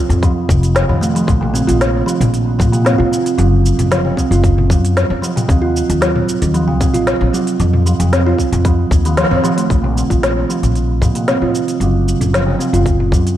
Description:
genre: organic downtempo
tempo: 114 BPM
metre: 4/4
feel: straight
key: unclear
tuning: A4 = 440 Hz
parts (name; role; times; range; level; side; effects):
- upright bass; bass; 0.1-13.4 s; F1 to Bb2; -15 LUFS; left 1 dB; none
- organic electronic drum kit; drums; 0.1-13.4 s; cabasa, hi-hat, snare drum, toms; -20 LUFS; left 1 dB; none
- kalimba; arpeggios; 0.2-13.3 s; C3 to F4; -16 LUFS; right 3 dB; low-pass filter, diffuse ambient delay
- electronic kick drum; drums; 0.2-13.2 s; none; -15 LUFS; left 1 dB; none
room: moderate lush hall reverb, RT60 1.5 s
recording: dreamy mix soaked in reverb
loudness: -12 LUFS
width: side -12 dB against mid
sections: 0.0-9.7 A section; 9.7-13.4 B section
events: band accent 9.2; filter sweep on kalimba 9.7-13.4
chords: 0.0 N.C.; 1.3 Bb5; 3.4 F5; 5.5 Ebm; 7.6 F7(no3); 9.7 Bb5; 11.8 F5

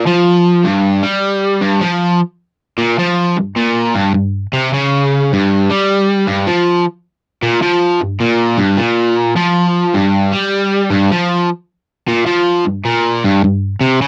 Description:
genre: rock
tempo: 103 BPM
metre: 4/4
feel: swing 66% on 8ths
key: unclear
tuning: A4 = 439 Hz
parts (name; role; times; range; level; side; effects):
- overdriven semi-hollow guitar; solo; 0.0-14.1 s; G2 to G3; -14 LUFS; equal; none
room: light reverb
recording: dry, close 1970s-style studio recording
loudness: -14 LUFS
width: mono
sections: 0.0-14.1 A section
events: none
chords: none

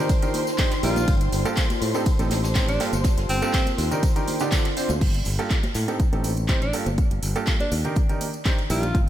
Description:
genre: piano house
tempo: 122 BPM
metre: 4/4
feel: swing 53% on 16ths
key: G minor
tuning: A4 = 439 Hz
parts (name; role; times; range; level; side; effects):
- dark studio violin section; sustained chords; 0.0-5.0 s; C5 to C6; -33 LUFS; equal; sidechain pumping
- clear upright piano; riff; 0.0-8.8 s; G2 to D5; -28 LUFS; right 2 dB; vintage 12-bit sampler grit, sidechain pumping, low-pass filter, analog delay
- warbly tape-like pad; texture; 0.0-9.1 s; D4 to A5; -33 LUFS; left 2 dB; chorus, built-in reverb, sidechain pumping
- electronic kick drum; drums; 0.1-9.1 s; none; -22 LUFS; equal; studio reverb
- house drum kit; drums; 0.1-9.1 s; crash cymbal, handclaps, hi-hat, ride cymbal, tambourine; -31 LUFS; right 1 dB; studio reverb
- tambourine and snare drum; drums; 0.1-4.9 s; none; -38 LUFS; right 1 dB; none
- tambourine and congas; percussion; 0.1-9.1 s; none; -35 LUFS; equal; none
- warm tenor saxophone; melody; 0.8-9.0 s; C4 to F4; -30 LUFS; right 1 dB; analog delay
- modern bright fingered electric bass; bass; 0.8-9.1 s; G1 to A2; -25 LUFS; equal; sidechain pumping
room: light reverb, small room ambience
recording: none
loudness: -20 LUFS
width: side -12 dB against mid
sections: 0.0-5.0 A section; 5.0-9.1 B section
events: drop 0.0-5.0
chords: 0.0 Ebmaj7; 1.1 Gm9; 1.8 Am7b5; 2.8 Gm9; 3.8 Ebmaj7; 4.5 Dm7; 5.0 Gm9; 5.8 Am7b5; 6.7 Gm9; 7.7 Ebmaj7

